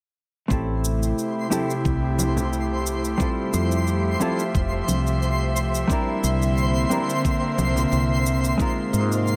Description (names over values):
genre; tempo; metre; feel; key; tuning
sunset chillout; 89 BPM; 4/4; swing 54% on 16ths; unclear; A4 = 439 Hz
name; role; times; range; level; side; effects
hollow-body jazz guitar; accompaniment; 0.5-9.4 s; G3 to Bb4; -29 LUFS; equal; digital delay
airy breathy pad; sustained chords; 0.9-9.4 s; C3 to E5; -29 LUFS; equal; chorus
woody fretless electric bass; bass; 0.5-9.4 s; F1 to Ab2; -26 LUFS; equal; subtle chorus
cabasa; drums; 0.5-9.4 s; none; -34 LUFS; equal; none
electronic kick drum; drums; 0.5-8.7 s; none; -28 LUFS; equal; none
twinkling granular texture; texture; 1.3-9.4 s; C5 to C6; -33 LUFS; equal; built-in reverb
congas; percussion; 1.5-7.9 s; none; -33 LUFS; equal; none
room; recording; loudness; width
light reverb; none; -23 LUFS; mono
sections
0.5-9.4 A section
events
none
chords
0.5 Am7; 3.2 Fmaj9; 5.9 C9; 8.6 Ab69